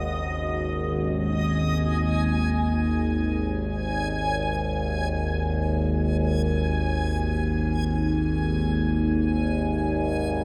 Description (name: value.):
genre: dark ambient drone.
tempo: free time.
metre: none.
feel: none.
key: unclear.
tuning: A4 = 440 Hz.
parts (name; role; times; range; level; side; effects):
deep dark ambient pad; sustained chords; 0.0-0.9, 10.3-10.4 s; C#4 to F#5; -38 LUFS; equal; chorus, built-in reverb.
overtone-sweeping drone; drone; 0.0-10.4 s; G#1 to D#2; -26 LUFS; equal; chorus, built-in reverb.
backwards swelling texture; texture; 0.0-10.4 s; D#5 to G#5; -34 LUFS; equal; built-in reverb.
room: wet cathedral reverb, RT60 5.0 s.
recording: none.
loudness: -25 LUFS.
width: mono.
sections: 0.9-10.4 A section.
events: none.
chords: 0.0 C#sus4; 0.9 G#5.